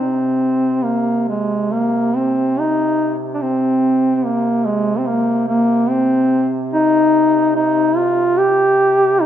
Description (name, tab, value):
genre	caucasian folk, Caucasian lament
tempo	72 BPM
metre	4/4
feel	rubato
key	C minor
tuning	A4 = 440 Hz
part	mellow duduk	melody	0.0-9.3 s	Ab3 to G4	-14 LUFS	equal	none
part	warm duduk	drone	0.0-9.3 s	C3	-26 LUFS	right 3 dB	none
room	moderate scoring stage reverb, RT60 1.7 s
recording	minimal, uncompressed stereo recording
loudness	-14 LUFS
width	side -10 dB against mid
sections	0.0-9.3 A section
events	none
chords	none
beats	0.83 1.71 2.56 | 3.39 4.22 5.05 5.88 | 6.71 7.54 8.37 9.21